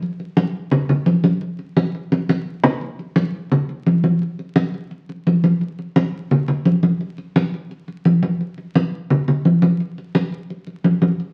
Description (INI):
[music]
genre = latin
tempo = 172 BPM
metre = 4/4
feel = straight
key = none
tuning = none
[part]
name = congas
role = percussion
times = 0.0-11.3 s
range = none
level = -19 LUFS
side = equal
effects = none
[sound]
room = wet studio reverb, RT60 0.8 s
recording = very old 78 rpm record, vinyl crackle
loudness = -19 LUFS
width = mono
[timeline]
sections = 0.0-2.8 A section; 2.8-11.3 B section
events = drum fill 2.1-2.8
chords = none